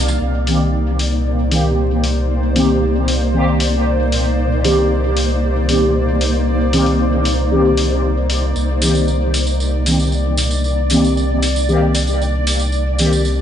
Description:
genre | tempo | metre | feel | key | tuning
dub techno | 115 BPM | 4/4 | straight | C minor | A4 = 442 Hz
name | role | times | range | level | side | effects
granular cloud pad | sustained chords | 0.0-13.4 s | Bb3 to D5 | -21 LUFS | equal | built-in reverb
warm sub bass | bass | 0.0-13.4 s | C2 | -18 LUFS | equal | none
bubbling stepped-filter texture | texture | 0.0-13.4 s | D5 to F5 | -28 LUFS | left 3 dB | chorus, built-in reverb
tambourine | percussion | 0.1-0.2, 8.6-13.4 s | none | -25 LUFS | right 3 dB | none
resonant sweep polysynth | stabs | 0.5-13.1 s | Eb3 to G4 | -18 LUFS | equal | chorus, phaser, vintage 12-bit sampler grit, dub echo
electronic hi-hat | drums | 0.5-13.1 s | none | -24 LUFS | left 3 dB | studio reverb
room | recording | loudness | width
moderate digital room reverb, RT60 1.0 s | vinyl crackle, nothing above 10.5 kHz | -14 LUFS | side -9 dB against mid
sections
0.2-13.4 A section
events
filter sweep on analog polysynth 0.2-13.4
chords
0.2 Cm7

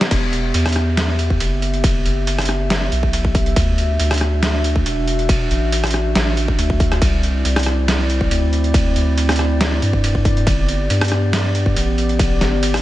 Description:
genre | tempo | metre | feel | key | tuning
deep dubstep | 139 BPM | 4/4 | half-time | E minor | A4 = 440 Hz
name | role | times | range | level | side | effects
dark analog pad | sustained chords | 0.0-12.8 s | B3 to E5 | -23 LUFS | right 1 dB | chorus
trip hop sampler-style drum kit | drums | 0.0-12.8 s | crash cymbal, hi-hat, ride cymbal, rim click, snare drum | -21 LUFS | equal | none
soft dub sub bass | bass | 0.1-12.8 s | E1 to G2 | -19 LUFS | equal | none
electronic kick drum | drums | 0.1-12.3 s | none | -18 LUFS | equal | overdrive
room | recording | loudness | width
little or no reverb | nothing above 10.4 kHz | -15 LUFS | side -15 dB against mid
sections
0.0-12.8 A section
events
none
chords
0.1 Em; 3.6 Dadd9; 7.0 Cadd9; 10.5 G

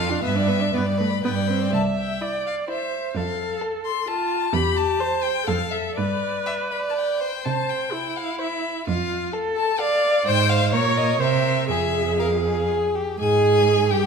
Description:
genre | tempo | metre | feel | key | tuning
quick classical-period movement for string quartet | 118-131 BPM | 3/4 | rubato | C major, F minor from 10.3 s | A4 = 441 Hz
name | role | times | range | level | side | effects
rich violin | melody | 0.0-14.1 s | Db5 to C6 | -26 LUFS | left 8 dB | none
clear violin | second line | 0.0-14.1 s | E4 to E5 | -28 LUFS | equal | none
rich viola | accompaniment | 0.0-14.1 s | A3 to E5 | -24 LUFS | right 2 dB | none
clear cello | bass | 0.0-14.1 s | C2 to C3 | -24 LUFS | right 4 dB | none
room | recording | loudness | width
moderate recital hall reverb, RT60 1.4 s | minimal, uncompressed stereo recording, faint mains hum | -20 LUFS | side -6 dB against mid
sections
0.0-1.7 A section; 1.7-13.2 B section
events
none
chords
0.2 G; 1.7 C; 3.1 F; 4.5 C/E; 5.5 F; 6.0 G; 7.5 C; 8.9 F; 10.3 Fm/Ab; 10.7 Bbm; 11.2 C7; 11.7 Fm; 13.2 N.C.

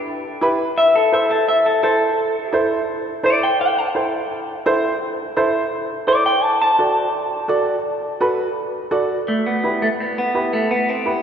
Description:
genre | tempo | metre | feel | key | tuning
latin | 169 BPM | 4/4 | straight | unclear | A4 = 439 Hz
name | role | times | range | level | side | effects
dark upright piano | accompaniment | 0.4-11.2 s | E4 to D5 | -20 LUFS | right 1 dB | none
clean electric guitar | melody | 0.8-11.2 s | A3 to A5 | -18 LUFS | left 1 dB | spring reverb
room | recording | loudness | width
wet cathedral reverb, RT60 4.0 s | recorded in a church or concert hall | -16 LUFS | side -8 dB against mid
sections
0.0-9.3 A section; 9.3-11.2 B section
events
clean electric guitar solo 0.0-9.3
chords
0.0 Em; 0.8 Am; 6.4 D; 9.3 Em

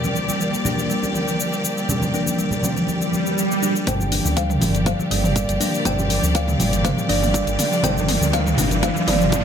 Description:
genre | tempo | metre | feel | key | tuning
afro house | 121 BPM | 4/4 | straight | G minor | A4 = 439 Hz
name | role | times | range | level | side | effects
warm symphonic string section | sustained chords | 0.0-9.4 s | F3 to D5 | -26 LUFS | left 1 dB | sidechain pumping, low-pass filter
buzzing kalimba | arpeggios | 0.0-9.3 s | D3 to D4 | -25 LUFS | left 1 dB | sidechain pumping, low-pass filter, ping-pong delay
deep house drum kit | drums | 0.0-9.4 s | hi-hat, shaker, toms | -25 LUFS | left 1 dB | none
congas | percussion | 0.0-9.4 s | none | -26 LUFS | right 2 dB | none
swell and riser | sound effects | 3.0-9.4 s | none | -26 LUFS | right 1 dB | none
kalimba | melody | 3.9-9.4 s | D5 to G5 | -25 LUFS | right 2 dB | low-pass filter, ping-pong delay
dark detuned saw bass | bass | 3.9-9.4 s | G1 to D2 | -23 LUFS | equal | sidechain pumping
electronic kick drum | drums | 3.9-9.4 s | none | -26 LUFS | equal | high-pass filter on kick
room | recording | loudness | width
moderate plate reverb, RT60 1.1 s, studio reverb | bright 1980s-style digital production | -18 LUFS | side -8 dB against mid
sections
0.0-3.9 A section; 3.9-9.4 B section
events
swell 3.0-3.9; build-up 3.9-9.4; drum fill 3.9-9.4; riser 3.9-9.4; filter sweep on kalimba 3.9-9.4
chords
0.0 Gm7

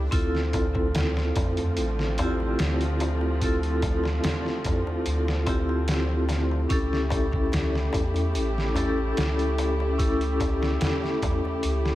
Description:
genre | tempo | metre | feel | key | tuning
trip hop | 73 BPM | 4/4 | straight | D minor | A4 = 440 Hz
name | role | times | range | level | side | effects
vibraphone with medium hard mallets | accompaniment | 0.0-11.9 s | C4 to A4 | -28 LUFS | left 1 dB | tremolo, tape echo
dark chamber string section | sustained chords | 0.0-11.9 s | C#3 to G4 | -33 LUFS | equal | none
soft dub sub bass | bass | 0.0-11.9 s | A1 to F2 | -27 LUFS | equal | none
trip hop sampler-style drum kit | drums | 0.1-11.9 s | hi-hat, kick drum, snare drum | -29 LUFS | equal | studio reverb
darbuka | percussion | 0.1-11.8 s | none | -34 LUFS | left 1 dB | none
room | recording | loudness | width
light reverb, small room reverb | vinyl crackle | -23 LUFS | side -15 dB against mid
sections
0.1-11.9 A section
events
none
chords
0.1 Dm7; 6.7 A7

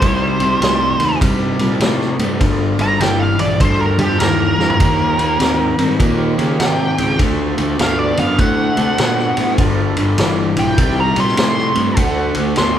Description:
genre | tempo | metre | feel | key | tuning
blues rock power trio and southern rock | 100 BPM | 4/4 | swing 64% on 8ths | G minor | A4 = 441 Hz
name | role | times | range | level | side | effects
bluesy overdriven lead guitar | melody | 0.0-12.8 s | G4 to C6 | -19 LUFS | right 1 dB | wah, distortion
tonewheel organ | sustained chords | 0.0-12.8 s | D4 to D5 | -27 LUFS | right 1 dB | overdrive, slow rotary speaker
overdriven semi-hollow guitar | riff | 0.0-12.8 s | G2 to C4 | -17 LUFS | equal | none
fuzz fingered electric bass | bass | 0.0-12.8 s | G1 to Db3 | -22 LUFS | equal | overdrive
vintage drum kit | drums | 0.0-12.8 s | kick drum, ride cymbal, snare drum, toms | -19 LUFS | equal | none
room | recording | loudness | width
moderate large studio reverb, RT60 1.4 s | band playing live in one room | -13 LUFS | side -10 dB against mid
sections
0.0-12.8 A section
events
lead electric guitar solo 0.0-12.8; drum fill 4.5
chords
0.0 Cm9; 2.4 Gm9; 4.8 Eb7; 7.2 D7#9; 9.6 Gm9; 10.8 Cm9; 12.0 D7

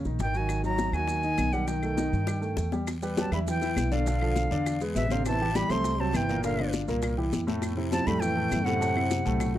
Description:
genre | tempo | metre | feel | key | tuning
Afro-Cuban jazz | 202 BPM | 4/4 | straight | E minor | A4 = 441 Hz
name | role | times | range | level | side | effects
upright bass | bass | 0.0-9.6 s | G1 to G2 | -30 LUFS | equal | none
congas | percussion | 0.0-9.6 s | none | -36 LUFS | left 2 dB | none
maracas | percussion | 0.0-9.6 s | none | -46 LUFS | right 7 dB | none
warm grand piano | accompaniment | 0.1-9.6 s | A2 to E5 | -31 LUFS | left 1 dB | none
bongos | percussion | 0.1-9.6 s | none | -37 LUFS | left 8 dB | none
breathy bright concert flute | melody | 0.2-9.5 s | E5 to C6 | -31 LUFS | left 1 dB | none
growling trombone | second line | 0.2-9.5 s | B2 to A3 | -33 LUFS | right 4 dB | none
claves | percussion | 0.5-9.6 s | none | -42 LUFS | left 6 dB | none
guiro | percussion | 2.9-9.6 s | none | -45 LUFS | left 6 dB | none
room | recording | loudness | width
studio reverb | dry, close 1970s-style studio recording | -25 LUFS | side -12 dB against mid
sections
0.0-2.9 A section; 2.9-9.6 B section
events
drum fill 2.0-2.9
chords
0.5 G#m9; 1.7 Baug7; 2.9 Em7; 4.1 Bm7b5; 4.7 E7; 5.3 Am7; 6.4 Gm7; 7.0 C7; 7.6 Fmaj9; 8.8 F#m7b5

